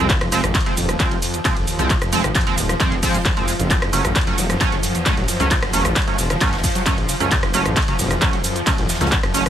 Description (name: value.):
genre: driving peak-time techno.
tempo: 133 BPM.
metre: 4/4.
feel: straight.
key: unclear.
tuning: A4 = 439 Hz.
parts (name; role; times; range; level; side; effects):
screaming distorted acid line; riff; 0.0-9.5 s; Eb2 to Gb3; -26 LUFS; equal; distortion, lush chorus, sidechain pumping, tape echo.
sync-sweep polysynth; stabs; 0.0-9.4 s; F3 to Db4; -23 LUFS; right 3 dB; chorus, phaser, sidechain pumping, tape echo.
detuned saw bass; bass; 0.0-9.5 s; Eb1 to Db2; -24 LUFS; equal; sidechain pumping.
swarming drone; drone; 0.0-9.5 s; F3; -27 LUFS; equal; built-in reverb, sidechain pumping.
electronic kick drum; drums; 0.1-9.2 s; none; -21 LUFS; equal; none.
punchy analog drum machine; drums; 0.1-9.5 s; handclaps, hi-hat, ride cymbal, rim click, shaker; -22 LUFS; equal; sidechain pumping on hats, sidechain pumping on cymbals, sidechain pumping on perc.
vintage brush drum kit; drums; 0.1-9.5 s; hi-hat, snare drum; -34 LUFS; right 2 dB; none.
room: digital ambience.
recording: none.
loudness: -16 LUFS.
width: side -10 dB against mid.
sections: 0.0-9.5 A section.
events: none.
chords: 0.0 Fm; 3.7 Gbm.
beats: | 0.10 0.55 1.00 1.45 | 1.90 2.35 2.80 3.25 | 3.70 4.16 4.61 5.06 | 5.51 5.96 6.41 6.86 | 7.31 7.76 8.22 8.67 | 9.12.